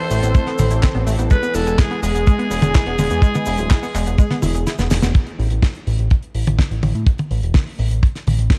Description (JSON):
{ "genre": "italo disco", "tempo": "125 BPM", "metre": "4/4", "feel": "straight", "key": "A harmonic minor", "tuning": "A4 = 440 Hz", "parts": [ { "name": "raspy alto saxophone", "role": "melody", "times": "0.0-4.6 s", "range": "G#4 to C5", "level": "-26 LUFS", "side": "equal", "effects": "tape echo" }, { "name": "warm analog pad", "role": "sustained chords", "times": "0.0-5.1 s", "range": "E3 to A4", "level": "-28 LUFS", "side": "equal", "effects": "chorus" }, { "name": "analog pluck", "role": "arpeggios", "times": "0.0-5.1 s", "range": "G#3 to G#4", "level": "-29 LUFS", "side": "equal", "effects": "chorus, vintage 12-bit sampler grit, tape echo" }, { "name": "fat analog bass", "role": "bass", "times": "0.1-8.5 s", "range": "D1 to A2", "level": "-22 LUFS", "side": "equal", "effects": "none" }, { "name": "damped 70s drum kit", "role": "drums", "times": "0.1-8.6 s", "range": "cabasa, handclaps, hi-hat, snare drum, toms", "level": "-25 LUFS", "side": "equal", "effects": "small room ambience" }, { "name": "kick drum", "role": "drums", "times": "0.3-8.6 s", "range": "none", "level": "-16 LUFS", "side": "equal", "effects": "small room ambience" } ], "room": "light reverb, small room ambience", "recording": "dark, warm production", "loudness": "-18 LUFS", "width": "mono", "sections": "0.0-5.1 A section; 5.1-8.6 B section", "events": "kick drops out 4.7-5.1; drum fill 4.7-5.1; band accent 5.0", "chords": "0.0 Amadd9; 1.3 E; 5.1 A5", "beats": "0.35 0.83 | 1.31 1.79 2.27 2.75 | 3.23 3.71 4.19 4.67 | 5.15 5.63 6.11 6.59 | 7.07 7.55 8.03 8.51" }